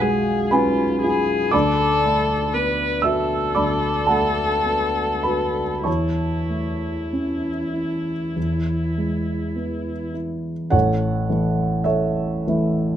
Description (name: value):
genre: classical, romantic duo for viola and grand piano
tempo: 47-60 BPM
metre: 4/4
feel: rubato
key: A major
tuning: A4 = 438 Hz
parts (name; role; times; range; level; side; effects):
- dark viola; melody; 0.0-10.1 s; E4 to B4; -23 LUFS; left 3 dB; none
- dark baby grand piano; accompaniment; 0.0-13.0 s; A1 to E6; -20 LUFS; right 1 dB; none
room: light reverb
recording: close, detailed microphones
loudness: -19 LUFS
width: side -10 dB against mid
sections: 0.0-10.7 A section; 10.7-13.0 B section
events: none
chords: 0.0 C#7/B; 1.5 Bm7/D; 5.9 A/E; 8.4 E; 10.7 A